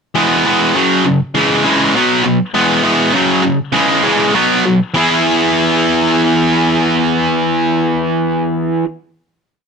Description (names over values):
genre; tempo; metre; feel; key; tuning
punk; 200 BPM; 4/4; straight; E major; A4 = 440 Hz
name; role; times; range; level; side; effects
distorted electric guitar; solo; 0.1-8.9 s; F#2 to G#4; -11 LUFS; equal; overdrive
room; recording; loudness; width
light reverb; band playing live in one room; -11 LUFS; side -5 dB against mid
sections
0.2-4.9 verse; 4.9-7.3 final chord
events
none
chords
0.2 E; 0.8 F#5; 1.2 C#m; 1.9 B5; 2.5 E; 3.1 F#5; 3.6 C#m; 4.3 B5; 4.9 E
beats
| 0.16 0.46 0.75 1.05 | 1.35 1.65 1.95 2.24 | 2.54 2.84 3.14 3.44 | 3.74 4.04 4.35 4.65 | 4.95 5.25 5.55 5.85 | 6.15 6.45 6.75 7.04